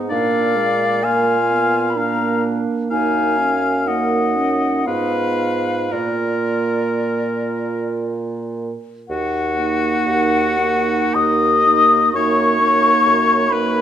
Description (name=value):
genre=classical, slow romantic movement for wind quintet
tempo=54-67 BPM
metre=3/4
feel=rubato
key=Eb minor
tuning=A4 = 440 Hz
part: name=dark clarinet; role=accompaniment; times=0.0-13.8 s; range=Db4 to F4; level=-25 LUFS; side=right 8 dB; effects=none
part: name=mellow French horn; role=accompaniment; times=0.0-13.8 s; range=Ab3 to Db4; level=-24 LUFS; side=right 3 dB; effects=none
part: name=mellow bassoon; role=bass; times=0.0-13.8 s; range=Eb2 to Bb2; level=-23 LUFS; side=right 2 dB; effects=none
part: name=mellow hollow silver concert flute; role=melody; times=0.1-13.8 s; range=D5 to Eb6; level=-19 LUFS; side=left 5 dB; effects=none
part: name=warm oboe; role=second line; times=0.1-13.8 s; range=Gb4 to F5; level=-21 LUFS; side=left 1 dB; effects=none
room=wet recital hall reverb, RT60 1.7 s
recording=minimal, uncompressed stereo recording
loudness=-15 LUFS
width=side -10 dB against mid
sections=0.0-9.1 A section; 9.1-13.8 B section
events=none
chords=0.1 Bb; 2.9 Ebm/Gb; 4.9 Fdim/Ab; 5.9 Bb; 9.1 Ebm; 12.1 Ebm/Gb